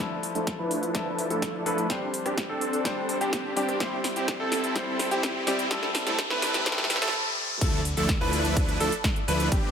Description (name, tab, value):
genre	EDM, festival progressive house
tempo	126 BPM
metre	4/4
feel	straight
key	unclear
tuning	A4 = 440 Hz
part	felt-muted upright piano	accompaniment	0.0-7.6 s	F3 to D5	-33 LUFS	left 3 dB	sidechain pumping, dub echo
part	lush unison pad	sustained chords	0.3-9.7 s	C4 to E6	-40 LUFS	right 2 dB	none
part	clear grand piano	arpeggios	0.0-9.7 s	G4 to B4	-33 LUFS	right 1 dB	sidechain pumping, low-pass filter, dub echo
part	supersaw chords	riff	0.0-9.7 s	F3 to B4	-29 LUFS	equal	wide subtle chorus, sidechain pumping, low-pass filter, dub echo
part	fat analog bass	bass	0.0-9.7 s	G1 to G2	-36 LUFS	equal	none
part	riser and impact	sound effects	3.9-9.5 s	none	-35 LUFS	equal	none
part	big-room dance drum kit	drums	0.2-9.6 s	crash cymbal, hi-hat, rim click, snare drum	-31 LUFS	equal	none
part	electronic kick drum	drums	0.5-9.6 s	none	-29 LUFS	equal	high-pass filter on kick, high-pass filter on room
room	moderate lush hall reverb, RT60 2.1 s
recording	high-pass filter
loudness	-24 LUFS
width	side -7 dB against mid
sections	0.0-7.6 A section; 7.6-9.7 B section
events	build-up 0.0-7.6; drum fill 0.0-7.1; filter sweep on supersaw synth 0.0-7.6; filter sweep on grand piano 0.0-7.6; filter sweep 0.0-7.6; riser 3.9-7.6; stop 7.1-7.6; drop 7.6-9.7; impact 7.6-9.5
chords	0.0 Dmadd9; 1.9 Gsus4; 3.8 C/G; 5.7 Am7; 7.6 Dmadd9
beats	0.47 0.95 1.42 | 1.90 2.38 2.85 3.33 | 3.80 4.28 4.76 5.23 | 5.71 6.18 6.66 7.14 | 7.61 8.09 8.57 9.04 | 9.52